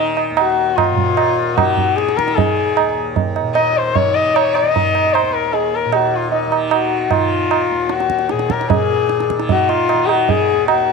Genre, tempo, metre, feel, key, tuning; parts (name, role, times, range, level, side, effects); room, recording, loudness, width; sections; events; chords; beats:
indian classical, Hindustani; 151 BPM; 4/4; straight; Eb raga bhimpalasi; A4 = 444 Hz
dark sarangi; melody; 0.0-10.9 s; Eb4 to Eb5; -17 LUFS; left 10 dB
tanpura; drone; 0.0-10.9 s; Eb2 to Eb3; -23 LUFS; right 2 dB
tabla; percussion; 0.2-10.8 s; -18 LUFS; right 11 dB
light reverb; 1960s-style stereo with parts hard left and right; -14 LUFS; side -4 dB against mid
0.0-8.7 A section; 8.7-10.9 B section
0.37 | 0.77 1.16 1.56 1.96 | 2.36 2.76 3.16 3.55 | 3.95 4.35 4.75 5.14 | 5.54 5.94 6.33 6.73 | 7.12 7.52 7.92 8.31 | 8.71 9.10 9.50 9.89 | 10.29 10.68